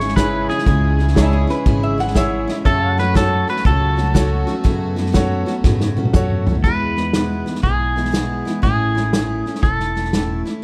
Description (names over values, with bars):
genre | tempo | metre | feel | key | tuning
honky-tonk and classic country | 120 BPM | 4/4 | swing 66% on 8ths | E major | A4 = 440 Hz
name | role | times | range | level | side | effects
twangy electric guitar | melody | 0.0-10.4 s | G#4 to C#5 | -25 LUFS | equal | none
picked steel-string acoustic guitar | accompaniment | 0.0-10.6 s | E2 to F#4 | -26 LUFS | equal | none
pedal steel guitar | sustained chords | 0.0-6.6 s | C#5 to F#5 | -34 LUFS | equal | subtle chorus
warm chamber string section | sustained chords | 0.0-6.6 s | C#3 to A4 | -31 LUFS | equal | none
upright bass | bass | 0.0-10.4 s | E1 to G#2 | -23 LUFS | equal | none
unplugged drum kit | drums | 0.0-10.5 s | hi-hat, kick drum, snare drum, toms | -22 LUFS | equal | none
bright grand piano | accompaniment | 0.2-6.5 s | E4 to C#5 | -28 LUFS | equal | none
lap resonator guitar | second line | 1.2-2.6 s | E4 to F#5 | -26 LUFS | equal | none
room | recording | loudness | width
small room ambience | none | -18 LUFS | mono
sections
0.0-6.6 A section; 6.6-10.6 B section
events
drum fill 5.6-6.6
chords
0.0 C#m; 2.7 F#m; 6.6 E; 8.6 A